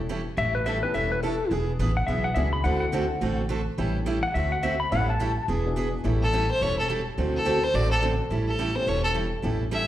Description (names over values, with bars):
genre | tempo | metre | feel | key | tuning
country, western swing | 212 BPM | 4/4 | swing 60% on 8ths | A mixolydian | A4 = 441 Hz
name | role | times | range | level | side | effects
dark upright piano | accompaniment | 0.0-9.6 s | B3 to A4 | -34 LUFS | left 3 dB | slapback echo
upright bass | bass | 0.0-9.9 s | E1 to D2 | -27 LUFS | equal | none
picked steel-string acoustic guitar | accompaniment | 0.1-9.8 s | D3 to A4 | -30 LUFS | right 4 dB | slapback echo
clean lap steel guitar | second line | 0.4-5.5 s | A4 to B5 | -27 LUFS | left 3 dB | slapback echo
clear fiddle | melody | 6.2-9.9 s | A4 to E5 | -26 LUFS | left 1 dB | slapback echo
room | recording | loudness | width
moderate club reverb, RT60 0.5 s | live gig heard through the venue's PA, recital hall reverb | -23 LUFS | side -13 dB against mid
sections
0.0-6.0 A section; 6.0-9.9 A section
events
electric slide guitar solo 0.0-6.0; fiddle solo 6.0-9.9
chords
0.0 A9; 1.5 E9; 2.6 D9; 3.8 A9; 4.4 D7; 4.9 A9; 5.5 E9; 6.0 A9; 7.2 D9; 8.3 A9